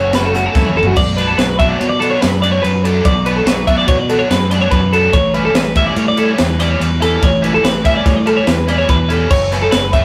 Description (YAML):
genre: math rock and midwest emo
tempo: 144 BPM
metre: 5/4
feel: straight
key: B minor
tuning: A4 = 440 Hz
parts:
  - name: twangy electric guitar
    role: accompaniment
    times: 0.0-1.0 s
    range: F#2 to F#4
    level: -26 LUFS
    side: equal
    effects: none
  - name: twelve-string electric guitar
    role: arpeggios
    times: 0.0-10.0 s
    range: F#4 to E5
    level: -18 LUFS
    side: equal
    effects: none
  - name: overdriven electric guitar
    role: riff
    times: 0.0-10.0 s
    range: F#2 to F#4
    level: -24 LUFS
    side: equal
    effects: none
  - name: growling fingered electric bass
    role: bass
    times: 0.0-10.0 s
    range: F#1 to B2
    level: -20 LUFS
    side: equal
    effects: overdrive
  - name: crisp fusion drum kit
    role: drums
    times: 0.1-10.0 s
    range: crash cymbal, hi-hat, kick drum, ride cymbal, snare drum, toms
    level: -19 LUFS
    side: equal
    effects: none
room: moderate stone room reverb, RT60 1.0 s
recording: rough rehearsal-room recording, warm saturation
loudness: -14 LUFS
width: mono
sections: 1.0-10.0 A section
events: drum fill 0.6-1.0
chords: 0.0 F#m7; 1.0 Bm7; 5.1 A7; 9.3 F#m7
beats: 0.15 0.56 | 0.98 1.39 1.81 2.23 2.64 | 3.06 3.47 3.89 4.30 4.72 | 5.14 5.55 5.97 6.39 6.80 | 7.22 7.64 8.05 8.47 8.89 | 9.31 9.73